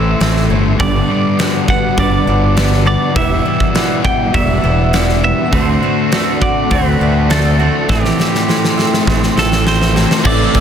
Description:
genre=rock, shoegaze and dream pop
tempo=101 BPM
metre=4/4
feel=straight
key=unclear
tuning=A4 = 440 Hz
part: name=clean electric guitar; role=melody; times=0.0-10.6 s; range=G4 to G5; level=-20 LUFS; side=right 3 dB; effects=tape echo
part: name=warbly tape-like pad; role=sustained chords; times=0.0-10.6 s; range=G3 to D6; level=-24 LUFS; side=equal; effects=chorus, built-in reverb
part: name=picked twelve-string acoustic guitar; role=arpeggios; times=0.0-10.6 s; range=E3 to G4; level=-23 LUFS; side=left 2 dB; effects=wide subtle chorus, tape echo
part: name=crunchy overdriven guitar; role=riff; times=0.0-10.6 s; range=G2 to F#4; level=-19 LUFS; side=right 11 dB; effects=reverse reverb
part: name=thick fuzz guitar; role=riff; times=0.0-10.6 s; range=E2 to D4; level=-18 LUFS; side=left 10 dB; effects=distortion, analog chorus
part: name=growling fingered electric bass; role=bass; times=0.0-10.5 s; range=E1 to D2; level=-16 LUFS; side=equal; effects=overdrive
part: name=huge arena drum kit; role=drums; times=0.2-10.6 s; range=crash cymbal, hi-hat, kick drum, snare drum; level=-18 LUFS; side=equal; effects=none
part: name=biting overdriven guitar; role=riff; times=10.2-10.6 s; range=A2 to A3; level=-19 LUFS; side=left 1 dB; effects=none
room=small room ambience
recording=dense, heavily limited modern master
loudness=-11 LUFS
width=side -8 dB against mid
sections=0.0-10.3 A section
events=drum fill 7.9-10.3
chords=0.0 Am7; 0.8 Gmaj7; 3.2 Em9; 5.5 D7; 7.9 Am7

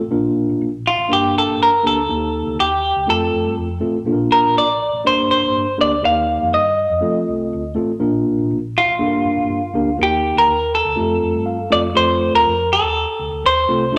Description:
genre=uptempo 1960s-style soul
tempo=122 BPM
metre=4/4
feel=straight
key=unclear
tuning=A4 = 440 Hz
part: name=hollow-body short-scale fingered electric bass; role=bass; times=0.0-14.0 s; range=G1 to F3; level=-31 LUFS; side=equal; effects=none
part: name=mellow tine electric piano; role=accompaniment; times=0.1-14.0 s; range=G2 to F5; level=-22 LUFS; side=equal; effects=none
part: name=semi-hollow electric guitar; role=melody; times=0.9-14.0 s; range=F4 to F5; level=-18 LUFS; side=equal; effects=spring reverb
room=wet studio reverb, RT60 0.5 s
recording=none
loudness=-17 LUFS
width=mono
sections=0.0-12.0 A section; 12.0-14.0 B section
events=tine electric piano fill 11.2-12.0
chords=0.1 Bb; 1.1 Gm; 2.1 Eb; 3.1 F; 4.1 Bb; 5.1 Gm; 6.0 Eb; 7.0 F; 8.0 Bb; 9.0 Gm; 10.0 Eb; 11.0 F

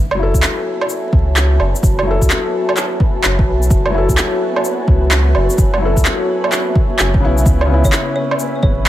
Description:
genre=future garage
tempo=128 BPM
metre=4/4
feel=swing 65% on 16ths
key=F# minor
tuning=A4 = 440 Hz
part: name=dark analog pad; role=sustained chords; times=0.6-8.9 s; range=C#4 to B5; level=-21 LUFS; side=equal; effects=chorus, sidechain pumping
part: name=soft dub sub bass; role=bass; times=0.0-8.9 s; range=F#1 to C#2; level=-16 LUFS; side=equal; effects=tube saturation, sidechain pumping
part: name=flickering grainy texture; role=texture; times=0.6-8.9 s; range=B3 to B4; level=-28 LUFS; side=equal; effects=built-in reverb
part: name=felt-muted upright piano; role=accompaniment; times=0.1-8.9 s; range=C#3 to A4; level=-22 LUFS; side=left 3 dB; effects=sidechain pumping, digital delay
part: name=electronic woodblock, shaker and handclaps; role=drums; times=0.1-8.9 s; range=none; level=-18 LUFS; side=right 1 dB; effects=overdrive
part: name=electronic kick drum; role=drums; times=0.3-8.8 s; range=none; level=-15 LUFS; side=equal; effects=overdrive
part: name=kalimba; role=melody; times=7.8-8.9 s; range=C#5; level=-23 LUFS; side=equal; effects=vintage 12-bit sampler grit
room=light reverb, digital ambience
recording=vinyl crackle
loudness=-12 LUFS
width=side -13 dB against mid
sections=0.0-8.9 A section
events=none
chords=0.0 F#m7; 7.5 C#m7

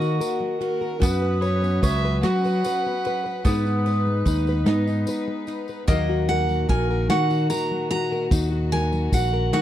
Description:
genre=acoustic folk duo or small band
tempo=49 BPM (dotted quarters)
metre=6/8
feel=straight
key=unclear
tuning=A4 = 440 Hz
part: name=picked steel-string acoustic guitar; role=melody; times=0.0-0.7, 5.9-9.6 s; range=D#5 to A#5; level=-27 LUFS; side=right 2 dB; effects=none
part: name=fingerpicked plugged-in steel-string acoustic guitar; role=accompaniment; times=0.0-9.6 s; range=G#2 to B4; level=-27 LUFS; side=left 4 dB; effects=none
part: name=warm chamber string section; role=sustained chords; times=0.0-9.6 s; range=A#2 to B4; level=-32 LUFS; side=equal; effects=none
part: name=mandolin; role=arpeggios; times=0.0-9.6 s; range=A#3 to C#5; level=-30 LUFS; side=right 4 dB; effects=none
part: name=fingered electric bass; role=bass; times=0.0-9.6 s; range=A#1 to F#3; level=-23 LUFS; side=equal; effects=none
part: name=tambourine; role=percussion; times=0.0-9.3 s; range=none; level=-40 LUFS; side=left 5 dB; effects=none
part: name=natural country drum kit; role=drums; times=0.2-9.6 s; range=kick drum, ride cymbal, snare drum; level=-23 LUFS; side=equal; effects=none
part: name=warm fiddle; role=second line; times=0.6-3.8 s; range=A#4 to F#5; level=-28 LUFS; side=right 3 dB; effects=none
room=little or no reverb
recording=dry, close 1970s-style studio recording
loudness=-20 LUFS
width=side -12 dB against mid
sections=0.0-9.6 A section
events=none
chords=0.0 D#m; 1.0 F#sus4; 3.4 G#m; 5.9 D#m

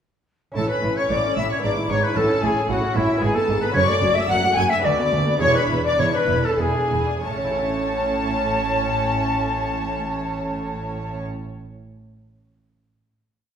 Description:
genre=classical, baroque-style concerto movement with solo episodes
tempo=93-114 BPM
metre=3/4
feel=straight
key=A major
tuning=A4 = 440 Hz
part: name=lute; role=accompaniment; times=0.5-11.6 s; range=D2 to E5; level=-30 LUFS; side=equal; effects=none
part: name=rich chamber violin section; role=melody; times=0.6-11.2 s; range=E5 to G#6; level=-30 LUFS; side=left 5 dB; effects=none
part: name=silver concert flute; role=melody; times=0.6-11.2 s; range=E4 to A5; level=-23 LUFS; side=left 2 dB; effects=none
part: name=rich chamber violin section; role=second line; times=0.6-11.2 s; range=E4 to G#5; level=-26 LUFS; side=equal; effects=none
part: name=warm studio viola section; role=accompaniment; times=0.6-11.2 s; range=F#3 to E4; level=-29 LUFS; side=right 1 dB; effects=none
part: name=warm chamber cello section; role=bass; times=0.6-11.2 s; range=D2 to A2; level=-28 LUFS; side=right 3 dB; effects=none
part: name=warm chamber double bass section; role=bass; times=0.6-11.2 s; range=E1 to D2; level=-28 LUFS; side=right 2 dB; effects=none
room=wet recital hall reverb, RT60 1.5 s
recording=heard from further back in the room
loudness=-19 LUFS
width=side -8 dB against mid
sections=0.6-7.2 ritornello; 7.2-11.1 final chord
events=slowing down 3.0-7.2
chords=0.6 A; 1.6 E7/G#; 2.2 A; 3.2 E/G#; 3.8 F#m; 4.8 Bm7/D; 5.4 E7; 7.2 A

